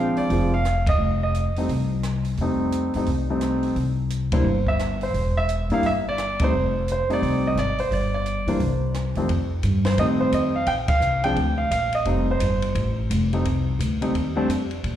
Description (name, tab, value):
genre	jazz piano trio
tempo	174 BPM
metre	4/4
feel	swing 62% on 8ths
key	F mixolydian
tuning	A4 = 436 Hz
part	warm concert grand piano	melody	0.0-14.5 s	F2 to G5	-23 LUFS	equal	slapback echo
part	upright bass	bass	0.0-15.0 s	E1 to Bb2	-24 LUFS	equal	none
part	compact cocktail drum kit	drums	0.2-14.9 s	hi-hat, kick drum, ride cymbal, rim click, snare drum	-30 LUFS	equal	none
room	light reverb, small room ambience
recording	live gig heard through the venue's PA, club reverb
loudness	-20 LUFS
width	side -11 dB against mid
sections	0.0-9.3 A section; 9.3-15.0 A section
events	band accent 0.8, 4.3, 6.4, 10.9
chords	0.0 Bb7; 1.0 F7; 3.8 C; 6.5 F7; 7.9 G5; 8.6 C; 9.3 F7; 10.7 Bb; 12.1 F7